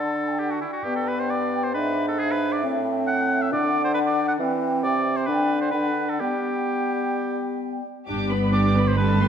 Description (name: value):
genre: quick classical-period movement for symphony orchestra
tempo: 125-138 BPM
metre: 4/4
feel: rubato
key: G major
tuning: A4 = 445 Hz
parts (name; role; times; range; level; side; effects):
- mellow clarinet; second line; 0.0-7.8 s; B3 to D4; -27 LUFS; equal; none
- mellow hollow large flute ensemble; second line; 0.0-7.9 s; E5 to A5; -29 LUFS; left 1 dB; none
- warm oboe; second line; 0.0-9.3 s; E4 to F#5; -27 LUFS; right 1 dB; none
- mellow bassoon; accompaniment; 0.0-7.8 s; G2 to G3; -28 LUFS; equal; none
- muted chamber violin section; melody; 8.1-9.3 s; A5 to D6; -32 LUFS; equal; none
- muted chamber violin section; second line; 8.1-9.3 s; G4 to B4; -31 LUFS; left 3 dB; none
- muted chamber viola section; accompaniment; 8.1-9.3 s; G3 to D4; -27 LUFS; right 2 dB; none
- dark French horn section; sustained chords; 8.1-9.3 s; G3 to C4; -25 LUFS; left 3 dB; none
- muted chamber cello section; bass; 8.1-9.3 s; G2; -23 LUFS; right 2 dB; none
- muted chamber double bass section; bass; 8.1-9.3 s; G1; -24 LUFS; right 3 dB; none
room: wet scoring stage reverb, RT60 1.8 s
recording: none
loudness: -21 LUFS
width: side -8 dB against mid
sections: 0.0-8.1 A section; 8.1-9.3 A section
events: none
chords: 0.0 D; 0.8 G; 1.7 E7/G#; 2.6 Am; 3.5 D; 4.4 C/E; 5.3 G/D; 6.2 G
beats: 0.38 | 0.84 1.29 1.75 2.19 | 2.64 3.08 3.52 3.95 | 4.39 4.83 5.27 5.73 | 6.20 6.68 7.15 7.62 | 8.08 8.53 8.98